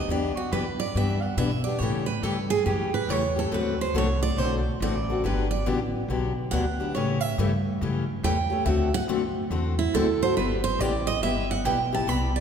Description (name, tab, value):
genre	acoustic string swing (jazz manouche)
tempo	140 BPM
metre	4/4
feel	swing 64% on 8ths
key	G major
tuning	A4 = 440 Hz
part	picked steel-string acoustic guitar	second line	0.0-12.4 s	E4 to B5	-28 LUFS	right 5 dB	none
part	picked steel-string acoustic guitar	accompaniment	0.0-12.3 s	C3 to A4	-28 LUFS	left 4 dB	none
part	upright bass	bass	0.0-12.4 s	G1 to B2	-28 LUFS	equal	none
room	wet church reverb, RT60 3.0 s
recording	recorded in a church or concert hall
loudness	-23 LUFS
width	side -7 dB against mid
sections	0.0-12.1 A section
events	steel-string acoustic guitar solo 0.0-12.4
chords	0.1 Em7; 1.8 A7; 3.5 D7; 5.2 Gmaj7; 7.0 A7; 8.7 D7; 10.4 G6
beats	| 0.09 0.52 0.95 1.38 | 1.81 2.24 2.67 3.09 | 3.52 3.95 4.38 4.81 | 5.24 5.67 6.09 6.52 | 6.95 7.38 7.81 8.23 | 8.66 9.09 9.52 9.95 | 10.38 10.80 11.23 11.66 | 12.09